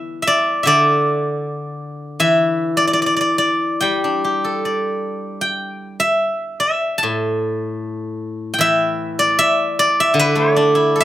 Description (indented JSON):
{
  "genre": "chinese traditional",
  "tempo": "76 BPM",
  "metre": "2/4",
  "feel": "rubato",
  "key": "unclear",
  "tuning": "A4 = 439 Hz",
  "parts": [
    { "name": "steel-string zither", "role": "solo", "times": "0.0-11.0 s", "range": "A2 to A5", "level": "-16 LUFS", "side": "equal", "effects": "none" }
  ],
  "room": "moderate studio reverb, RT60 0.5 s",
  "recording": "none",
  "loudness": "-15 LUFS",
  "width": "side -13 dB against mid",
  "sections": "0.0-11.0 A section",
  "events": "none",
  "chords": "none"
}